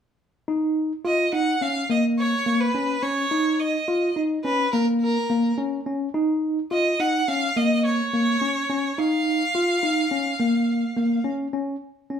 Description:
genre	progressive instrumental, progressive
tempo	106 BPM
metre	5/4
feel	straight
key	Eb minor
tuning	A4 = 441 Hz
part	bright tine electric piano	arpeggios	0.5-12.2 s	Bb3 to F4	-22 LUFS	equal	medium stereo tremolo
part	clear violin	melody	1.1-11.3 s	Bb4 to Gb5	-24 LUFS	right 1 dB	none
room	wet studio reverb, RT60 0.8 s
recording	band playing live in one room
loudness	-20 LUFS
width	side -8 dB against mid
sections	0.5-11.8 A section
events	none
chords	0.5 Eb5

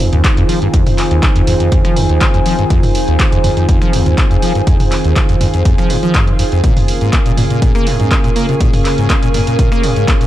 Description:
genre	acid house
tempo	122 BPM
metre	4/4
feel	straight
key	F minor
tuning	A4 = 439 Hz
part	lush unison pad	sustained chords	0.0-10.3 s	Db3 to Ab4	-18 LUFS	equal	chorus, sidechain pumping
part	acid bass, saw	riff	0.0-10.3 s	Eb2 to Bb3	-15 LUFS	equal	tube saturation, analog chorus
part	punchy analog drum machine	drums	0.0-10.3 s	finger snaps, handclaps, hi-hat, toms	-19 LUFS	equal	studio reverb
part	warbly tape-like pad	texture	0.0-10.3 s	F4 to Db6	-22 LUFS	right 2 dB	chorus, built-in reverb, sidechain pumping
part	electronic kick drum	drums	0.2-10.2 s	none	-14 LUFS	equal	studio reverb
room	digital ambience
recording	none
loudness	-10 LUFS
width	side -13 dB against mid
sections	0.0-10.3 A section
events	none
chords	0.0 Fm7; 6.6 Bbm7

